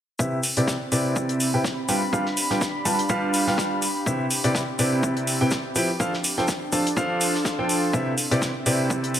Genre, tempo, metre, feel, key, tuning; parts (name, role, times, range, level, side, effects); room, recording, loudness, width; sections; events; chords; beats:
piano house; 124 BPM; 4/4; swing 57% on 16ths; C major; A4 = 440 Hz
warm baby grand piano; riff; 0.2-9.2 s; C3 to A5; -24 LUFS; equal; vintage 12-bit sampler grit, sidechain pumping, low-pass filter, ping-pong delay
cloth-damped thuddy drum kit; drums; 0.2-9.2 s; hi-hat, shaker, snare drum; -32 LUFS; left 2 dB; sidechain pumping on hats, high-pass filter on hats, high-pass filter on snare, sidechain pumping on perc, high-pass filter on perc, high-pass filter on room, gated reverb
electronic kick drum; drums; 0.2-9.0 s; -30 LUFS; equal; overdrive, high-pass filter on kick, high-pass filter on room
airy breathy pad; texture; 0.5-9.2 s; C4 to C6; -28 LUFS; equal; chorus, sidechain pumping
electronic hi-hat; drums; 0.4-9.2 s; -28 LUFS; equal; overdrive
moderate lush hall reverb, RT60 1.9 s, small room ambience; bright 1980s-style digital production; -21 LUFS; side -10 dB against mid
0.2-9.2 A section
filter sweep on grand piano 0.2-9.2
0.2 Cmaj7; 1.9 G7; 3.8 Cmaj7; 6.0 F6; 7.9 Cmaj7
| 0.19 0.68 1.16 1.64 | 2.13 2.61 3.10 3.58 | 4.06 4.55 5.03 5.51 | 6.00 6.48 6.97 7.45 | 7.93 8.42 8.90